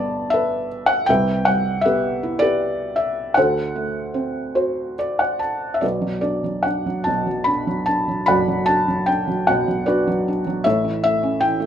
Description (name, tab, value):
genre	classical, lyrical solo piano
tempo	69-80 BPM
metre	3/4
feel	rubato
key	B minor from 5.8 s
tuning	A4 = 441 Hz
part	felt-muted upright piano	solo	0.0-11.7 s	F#1 to B5	-18 LUFS	equal	none
room	light reverb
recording	none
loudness	-18 LUFS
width	side -9 dB against mid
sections	0.0-5.8 A section; 5.8-11.7 B section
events	felt piano fill 4.2-5.8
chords	0.0 Em7/G; 1.1 Cmaj7; 3.4 D7; 5.8 Bm; 10.6 A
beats	0.33 | 1.09 1.85 2.61 | 3.37 4.15 4.99 | 5.83 6.66 7.49 | 8.29 9.09 9.87 | 10.65 11.41